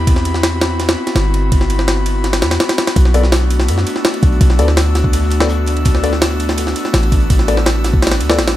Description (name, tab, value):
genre	drum and bass, jungle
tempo	166 BPM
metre	4/4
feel	straight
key	B phrygian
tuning	A4 = 440 Hz
part	airy breathy pad	sustained chords	0.0-8.6 s	A3 to F#4	-21 LUFS	left 1 dB	chorus
part	warm 808-style bass	bass	0.0-8.6 s	G1 to F#2	-15 LUFS	equal	tube saturation
part	drifting glass-harmonics texture	texture	0.0-8.6 s	B5 to E6	-28 LUFS	left 2 dB	chorus, built-in reverb
part	jungle sampler-style drum kit	drums	0.1-8.6 s	kick drum, ride cymbal, snare drum	-15 LUFS	equal	studio reverb
part	crunchy breakbeat drum kit	drums	3.0-8.5 s	hi-hat, snare drum	-32 LUFS	left 4 dB	none
part	warm concert grand piano	stabs	3.1-8.3 s	B3 to D5	-22 LUFS	left 4 dB	dub echo
room	little or no reverb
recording	none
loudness	-12 LUFS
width	side -14 dB against mid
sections	0.0-8.6 A section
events	none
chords	0.0 Cmaj7; 3.0 Bm7